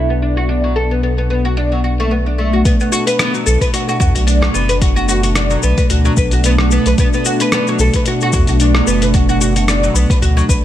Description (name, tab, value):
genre	organic downtempo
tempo	111 BPM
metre	4/4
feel	swing 55% on 16ths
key	B minor pentatonic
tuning	A4 = 440 Hz
part	warm analog pad	sustained chords	0.0-10.6 s	B2 to D4	-18 LUFS	right 1 dB	chorus, sidechain pumping
part	oud	arpeggios	0.0-10.6 s	F#3 to B4	-18 LUFS	equal	ping-pong delay
part	warm sub bass	bass	0.0-10.6 s	F#1 to E2	-16 LUFS	equal	tube saturation, sidechain pumping
part	dusty soul sampler-style drum kit	drums	2.7-10.6 s	hi-hat, rim click, shaker	-20 LUFS	left 2 dB	none
part	electronic kick drum	drums	2.7-10.6 s	none	-15 LUFS	equal	none
room	light reverb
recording	low-pass filter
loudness	-12 LUFS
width	side -12 dB against mid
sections	0.0-2.7 A section; 2.7-10.6 B section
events	none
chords	0.0 Bm7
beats	| 0.49 1.03 1.57 2.11 | 2.65 3.19 3.73 4.28 | 4.82 5.36 5.90 6.44 | 6.98 7.52 8.06 8.60 | 9.14 9.68 10.22